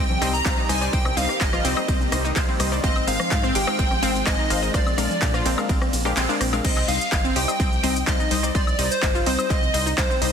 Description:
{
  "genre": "progressive house",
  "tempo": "126 BPM",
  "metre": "4/4",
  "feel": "straight",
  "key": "C minor",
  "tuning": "A4 = 440 Hz",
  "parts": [
    { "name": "plucky unison lead", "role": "melody", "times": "0.0-10.3 s", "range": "C5 to Bb5", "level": "-28 LUFS", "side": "equal", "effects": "sidechain pumping, dub echo" },
    { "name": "warm symphonic violin section", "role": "second line", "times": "0.0-10.3 s", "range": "C5 to Bb5", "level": "-31 LUFS", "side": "equal", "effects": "sidechain pumping, dub echo" },
    { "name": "supersaw pad", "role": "sustained chords", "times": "0.0-6.6 s", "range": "D3 to G4", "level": "-33 LUFS", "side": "right 1 dB", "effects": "phaser, sidechain pumping" },
    { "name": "analog pluck", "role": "arpeggios", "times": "0.0-10.2 s", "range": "C4 to C5", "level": "-29 LUFS", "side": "equal", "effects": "chorus, sidechain pumping, dub echo" },
    { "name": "wide unison pluck", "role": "stabs", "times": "0.0-10.3 s", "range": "G3 to Ab5", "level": "-28 LUFS", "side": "left 4 dB", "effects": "sidechain pumping, dub echo" },
    { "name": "round analog bass", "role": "bass", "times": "0.0-10.3 s", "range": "G1 to Bb2", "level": "-28 LUFS", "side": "right 1 dB", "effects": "sidechain pumping" },
    { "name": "house drum kit", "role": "drums", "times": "0.1-10.3 s", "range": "crash cymbal, handclaps, hi-hat, ride cymbal, shaker, woodblock", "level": "-27 LUFS", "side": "right 1 dB", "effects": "overdrive" },
    { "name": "electronic congas and rim click", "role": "percussion", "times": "0.1-6.5 s", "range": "none", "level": "-31 LUFS", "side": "left 3 dB", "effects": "soft clipping on snare, sidechain pumping on snare, sidechain pumping on perc" },
    { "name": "electronic kick drum", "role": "drums", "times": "0.5-10.1 s", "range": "none", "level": "-24 LUFS", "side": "equal", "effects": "overdrive" }
  ],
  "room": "digital ambience",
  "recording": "dense, heavily limited modern master",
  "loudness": "-19 LUFS",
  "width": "side -7 dB against mid",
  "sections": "0.0-6.6 A section; 6.6-10.3 A section",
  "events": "drop 0.0-6.6, 6.6-10.3; kick drops out 6.2-6.6; band accent 6.2",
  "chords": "0.0 Cm; 2.8 Ab6; 4.7 Bb7; 6.6 Cm"
}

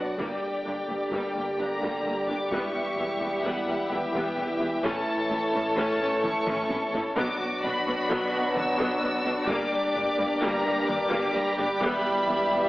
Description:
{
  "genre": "cinematic, hybrid orchestral and electronic film score",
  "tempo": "129 BPM",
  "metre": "5/4",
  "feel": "straight",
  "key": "unclear",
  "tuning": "A4 = 442 Hz",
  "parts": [
    { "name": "rich studio violin section", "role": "melody", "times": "0.0-12.7 s", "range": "F#5 to E6", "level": "-34 LUFS", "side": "left 1 dB", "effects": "none" },
    { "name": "rich studio violin section", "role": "second line", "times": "0.0-12.7 s", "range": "F#4 to E5", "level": "-30 LUFS", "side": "left 1 dB", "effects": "none" },
    { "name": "warm symphonic viola section", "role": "accompaniment", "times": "0.0-12.6 s", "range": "F#3 to E4", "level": "-32 LUFS", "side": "equal", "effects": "none" },
    { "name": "mellow French horn section", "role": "sustained chords", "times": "0.0-12.7 s", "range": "Bb3 to G4", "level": "-33 LUFS", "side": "left 1 dB", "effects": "none" },
    { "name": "warm trombone section", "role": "sustained chords", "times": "0.0-12.7 s", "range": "G2 to A3", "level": "-30 LUFS", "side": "right 1 dB", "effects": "none" },
    { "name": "pure sine sub bass", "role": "bass", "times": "0.0-12.7 s", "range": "E1 to B1", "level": "-54 LUFS", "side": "equal", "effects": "none" },
    { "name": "rich symphonic cello section", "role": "bass", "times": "0.0-12.6 s", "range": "E2 to B2", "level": "-36 LUFS", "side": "equal", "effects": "none" },
    { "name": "rich symphonic double bass section", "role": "bass", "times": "0.0-12.6 s", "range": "E1 to B1", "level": "-41 LUFS", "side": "equal", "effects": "none" },
    { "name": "taiko ensemble", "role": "drums", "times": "0.2-12.2 s", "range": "none", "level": "-40 LUFS", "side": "equal", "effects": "none" }
  ],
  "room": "wet recital hall reverb, RT60 1.3 s",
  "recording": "heavily compressed radio sound, AM radio sound",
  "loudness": "-24 LUFS",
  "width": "side -18 dB against mid",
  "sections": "0.0-12.7 A section",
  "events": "drum fill 6.5-7.2",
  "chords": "0.2 Gm; 2.5 Em; 4.8 A; 7.2 Bm; 9.5 Gm; 11.8 Em"
}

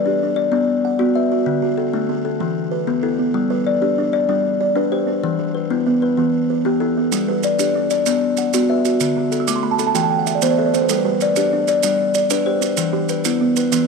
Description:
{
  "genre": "southern african traditional, mbira-style interlocking cycle",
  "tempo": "127 BPM (dotted quarters)",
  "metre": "12/8",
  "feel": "straight",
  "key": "G major",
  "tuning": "A4 = 440 Hz",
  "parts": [
    { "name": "buzzing kalimba", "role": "arpeggios", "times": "0.0-13.9 s", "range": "D3 to E6", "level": "-20 LUFS", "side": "right 13 dB", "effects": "none" },
    { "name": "kalimba", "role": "arpeggios", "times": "0.0-13.9 s", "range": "D3 to E5", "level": "-18 LUFS", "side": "left 8 dB", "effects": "none" },
    { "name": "maracas", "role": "percussion", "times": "7.1-13.9 s", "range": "none", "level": "-26 LUFS", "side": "right 15 dB", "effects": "none" }
  ],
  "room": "moderate plate reverb, RT60 3.5 s",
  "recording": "1960s-style stereo with parts hard left and right",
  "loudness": "-16 LUFS",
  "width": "side -4 dB against mid",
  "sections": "0.0-13.9 A section",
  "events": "kalimba fill 9.2-10.9",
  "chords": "0.0 G; 0.5 Bm; 1.5 D; 2.4 E5; 3.3 G; 5.2 Em; 7.1 G; 8.1 Bm; 9.0 D; 10.0 E5; 10.9 G; 12.8 Em"
}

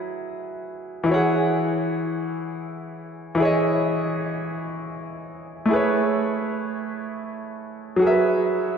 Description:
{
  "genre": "R&B",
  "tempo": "52 BPM (dotted quarters)",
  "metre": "6/8",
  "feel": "straight",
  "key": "E major",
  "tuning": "A4 = 440 Hz",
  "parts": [
    { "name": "clear concert grand piano", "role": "solo", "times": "0.0-8.8 s", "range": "E3 to F#5", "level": "-22 LUFS", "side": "equal", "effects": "tape echo" }
  ],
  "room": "wet lush hall reverb, RT60 2.7 s",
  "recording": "dreamy mix soaked in reverb",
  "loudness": "-21 LUFS",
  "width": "side -7 dB against mid",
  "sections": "0.0-8.8 A section",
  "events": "none",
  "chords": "0.0 F#9sus4; 1.1 E6; 5.7 Amaj9; 8.0 F#9sus4"
}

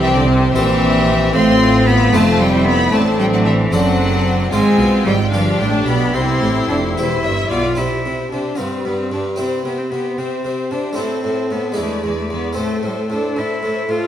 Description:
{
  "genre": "classical, baroque-style concerto movement with solo episodes",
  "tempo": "75 BPM (dotted quarters)",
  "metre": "6/8",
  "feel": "straight",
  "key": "C major",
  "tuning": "A4 = 437 Hz",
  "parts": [
    { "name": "clear cello", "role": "melody", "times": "0.0-14.1 s", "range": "C3 to F4", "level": "-19 LUFS", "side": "left 1 dB", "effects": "none" },
    { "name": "clear chamber violin section", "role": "melody", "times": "0.0-14.1 s", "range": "C5 to C6", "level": "-26 LUFS", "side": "left 2 dB", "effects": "none" },
    { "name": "clear chamber violin section", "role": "second line", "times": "0.0-14.1 s", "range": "D4 to E5", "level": "-24 LUFS", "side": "left 2 dB", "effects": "none" },
    { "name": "harpsichord", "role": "accompaniment", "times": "0.0-14.1 s", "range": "E2 to C5", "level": "-24 LUFS", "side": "right 1 dB", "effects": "none" },
    { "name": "rich chamber viola section", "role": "accompaniment", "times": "0.0-14.1 s", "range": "C4 to A4", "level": "-23 LUFS", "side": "left 1 dB", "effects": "none" },
    { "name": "clear chamber double bass section", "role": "bass", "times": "0.0-7.8 s", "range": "E1 to C2", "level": "-20 LUFS", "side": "right 3 dB", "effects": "none" },
    { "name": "rich studio cello section", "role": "bass", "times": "0.0-14.0 s", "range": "E2 to C3", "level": "-22 LUFS", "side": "right 2 dB", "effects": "none" }
  ],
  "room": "wet scoring stage reverb, RT60 1.8 s",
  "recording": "none",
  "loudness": "-14 LUFS",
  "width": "side -10 dB against mid",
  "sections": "0.0-7.8 A section; 7.8-14.1 B section",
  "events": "none",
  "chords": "0.0 C; 1.3 F/A; 2.9 D7/A; 4.5 Fm/Ab; 5.3 G; 6.1 C; 8.6 G7; 9.4 C; 11.0 Am; 11.8 E7; 12.6 Am"
}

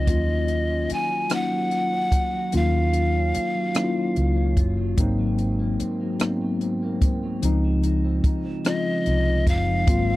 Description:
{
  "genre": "slow six-eight R&B",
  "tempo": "49 BPM (dotted quarters)",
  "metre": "6/8",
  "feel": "straight",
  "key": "Eb dorian",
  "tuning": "A4 = 440 Hz",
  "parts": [
    { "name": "breathy bright pan flute", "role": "melody", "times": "0.0-4.6, 8.7-10.2 s", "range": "Eb5 to Ab5", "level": "-26 LUFS", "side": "left 1 dB", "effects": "none" },
    { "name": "electric guitar at the edge of break-up", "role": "second line", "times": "0.0-10.2 s", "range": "Ab2 to F4", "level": "-32 LUFS", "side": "right 5 dB", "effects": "lush chorus, tape echo" },
    { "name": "mellow tine electric piano", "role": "accompaniment", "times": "0.0-10.2 s", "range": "F3 to F4", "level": "-25 LUFS", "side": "left 2 dB", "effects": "slow stereo tremolo" },
    { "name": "vintage muted fingered electric bass", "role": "bass", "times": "0.0-10.2 s", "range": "Gb1 to Eb2", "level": "-23 LUFS", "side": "equal", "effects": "none" },
    { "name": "compact cocktail drum kit", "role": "drums", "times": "0.1-10.1 s", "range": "hi-hat, kick drum, rim click", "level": "-22 LUFS", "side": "equal", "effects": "none" }
  ],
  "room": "light reverb",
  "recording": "dry, close 1970s-style studio recording",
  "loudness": "-20 LUFS",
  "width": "side -17 dB against mid",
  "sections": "0.0-9.9 A section",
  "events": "none",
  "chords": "0.1 Ebm9; 5.0 Ab9; 7.4 Dbmaj9"
}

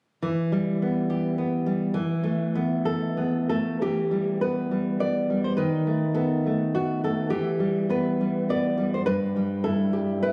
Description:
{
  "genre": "romantic piece for solo classical guitar",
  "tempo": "102 BPM",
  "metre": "3/4",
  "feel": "rubato",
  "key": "E minor",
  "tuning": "A4 = 443 Hz",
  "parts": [
    { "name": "nylon-string guitar", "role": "solo", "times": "0.2-10.3 s", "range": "G2 to D5", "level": "-25 LUFS", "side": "equal", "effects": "tape echo" }
  ],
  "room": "light reverb",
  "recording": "recorded on a phone in the room, club reverb",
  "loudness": "-25 LUFS",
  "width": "mono",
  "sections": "0.2-3.8 A section; 3.8-10.3 B section",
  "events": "none",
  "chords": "0.2 Em; 1.9 Esus4; 3.8 Em; 5.6 B7/D#; 7.3 Em; 9.1 Em/G"
}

